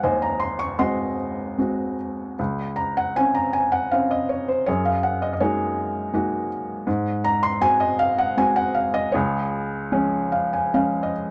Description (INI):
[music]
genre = classical, lyrical solo piano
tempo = 69-83 BPM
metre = 3/4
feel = rubato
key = Db major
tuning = A4 = 440 Hz
[part]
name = felt-muted upright piano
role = solo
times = 0.0-11.3 s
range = Db2 to Db6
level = -23 LUFS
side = equal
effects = none
[sound]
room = wet booth ambience, RT60 0.2 s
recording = none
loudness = -23 LUFS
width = mono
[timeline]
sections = 0.0-11.3 A section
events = felt piano fill 9.9-11.3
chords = 0.0 Ab7; 2.4 Dbmaj7; 4.7 Gb69; 6.9 Ab7; 9.1 Db